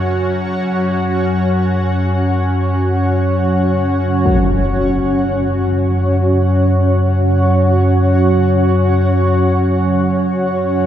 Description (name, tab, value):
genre	dark ambient drone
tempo	free time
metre	none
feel	none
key	unclear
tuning	A4 = 440 Hz
part	granular cloud pad	sustained chords	0.0-10.9 s	C#4 to C#5	-16 LUFS	equal	built-in reverb
part	analog drone	drone	0.0-10.9 s	F#2 to F#3	-15 LUFS	equal	chorus
part	bronze singing bowl	texture	0.0-4.3 s	none	barely audible	none	none
part	impact	percussion	4.3-4.5 s	none	-21 LUFS	left 1 dB	low-pass filter on sfx
room	wet cathedral reverb, RT60 7.1 s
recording	in a vast, echoing space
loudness	-13 LUFS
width	side -10 dB against mid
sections	0.0-4.3 A section; 4.3-10.9 B section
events	none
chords	0.0 F#5